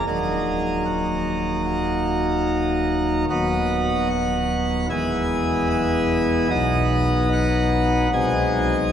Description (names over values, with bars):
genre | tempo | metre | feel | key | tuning
classical, chorale-style piece for pipe organ | 75 BPM | 4/4 | rubato | B major from 3.3 s | A4 = 436 Hz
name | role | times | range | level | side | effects
pipe organ, plenum | solo | 0.0-8.9 s | D#1 to G#5 | -19 LUFS | equal | none
room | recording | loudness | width
wet cathedral reverb, RT60 5.8 s | recorded in a church or concert hall | -19 LUFS | side -9 dB against mid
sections
0.0-8.9 A section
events
none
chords
0.1 D#m; 3.3 B/D#; 4.9 E; 6.5 B; 8.1 G#7/B#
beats
| 0.07 0.85 1.64 2.44 | 3.29 4.09 4.89 5.70 | 6.51 7.32 8.12